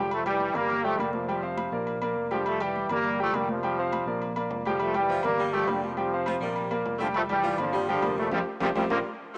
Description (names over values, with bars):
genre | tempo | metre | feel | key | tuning
latin, salsa | 205 BPM | 4/4 | straight | F major | A4 = 440 Hz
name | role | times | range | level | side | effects
bright trombone section | melody | 0.0-9.0 s | C3 to Bb3 | -31 LUFS | equal | cassette tape
warm concert grand piano | accompaniment | 0.0-9.0 s | G3 to G5 | -32 LUFS | equal | cassette tape
fingered electric bass | bass | 0.0-9.0 s | F1 to F2 | -42 LUFS | equal | none
agogo bells and timbales | percussion | 0.1-9.0 s | none | -38 LUFS | equal | none
congas | percussion | 0.1-9.0 s | none | -42 LUFS | equal | none
edgy saxophone section | second line | 5.1-9.4 s | F3 to A3 | -37 LUFS | equal | cassette tape
room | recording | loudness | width
moderate lush hall reverb, RT60 2.7 s | home recording on cassette, small speaker sound | -28 LUFS | mono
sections
0.1-9.4 A section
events
band accent 8.3-9.4; drum fill 9.1-9.4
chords
0.1 Fsus2; 6.6 Bb; 8.3 Fsus2